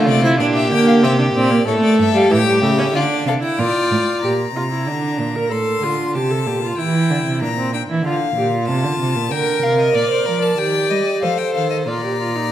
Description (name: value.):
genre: classical, baroque-style fugue for string quartet.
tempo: 94 BPM.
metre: 4/4.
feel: straight.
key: G minor, Bb major from 9.3 s.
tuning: A4 = 440 Hz.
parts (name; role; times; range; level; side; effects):
warm violin; second line; 0.0-4.2, 9.3-12.5 s; F4 to D5; -22 LUFS; left 3 dB; none.
warm viola; accompaniment; 0.0-12.5 s; E3 to Bb4; -18 LUFS; right 1 dB; none.
warm cello; bass; 0.0-12.5 s; G2 to G3; -21 LUFS; right 3 dB; none.
clear violin; melody; 0.1-12.5 s; C5 to C6; -23 LUFS; left 8 dB; none.
room: wet recital hall reverb, RT60 1.6 s.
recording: none.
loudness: -15 LUFS.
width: side -12 dB against mid.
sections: 0.0-4.2 A section; 4.2-12.5 B section.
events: none.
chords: 0.4 Em7b5/Bb (rootless); 1.7 A7; 2.9 Dm; 4.2 Gm/Bb (rootless); 5.5 F/A; 6.8 Edim; 8.1 Dm; 9.3 Bb; 10.6 Eb; 11.2 F7; 11.9 Bb.